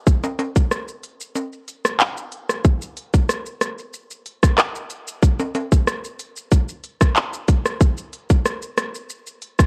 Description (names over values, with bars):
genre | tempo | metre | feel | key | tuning
dancehall | 93 BPM | 4/4 | straight | none | none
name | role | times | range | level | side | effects
island pop drum kit | drums | 0.1-9.7 s | handclaps, hi-hat, kick drum, rim click, shaker | -19 LUFS | equal | overdrive
maracas and timbales | percussion | 0.1-9.7 s | none | -31 LUFS | equal | none
room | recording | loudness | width
little or no reverb | worn, warbling old tape, cassette tape, warbly pitch drift | -21 LUFS | mono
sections
0.0-2.6 A section; 2.6-9.7 B section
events
kick muted 1.4-2.6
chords
none